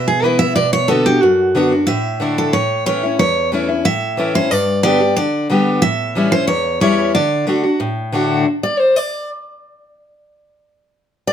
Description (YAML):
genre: bluegrass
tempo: 182 BPM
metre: 4/4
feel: straight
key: D major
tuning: A4 = 444 Hz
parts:
  - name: picked steel-string acoustic guitar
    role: melody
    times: 0.0-7.5 s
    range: F#4 to E5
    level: -16 LUFS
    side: right 2 dB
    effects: none
  - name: picked steel-string acoustic guitar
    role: accompaniment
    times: 0.0-11.3 s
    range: E2 to D5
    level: -16 LUFS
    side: left 2 dB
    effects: none
room: moderate studio reverb, RT60 0.7 s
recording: none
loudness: -14 LUFS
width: side -9 dB against mid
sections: 0.0-8.5 A section; 8.5-11.3 B section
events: steel-string acoustic guitar solo 8.5-11.3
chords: 0.0 E; 0.6 Bm; 1.9 Asus4; 2.5 A; 4.5 G; 5.8 A7; 7.1 D; 8.5 N.C.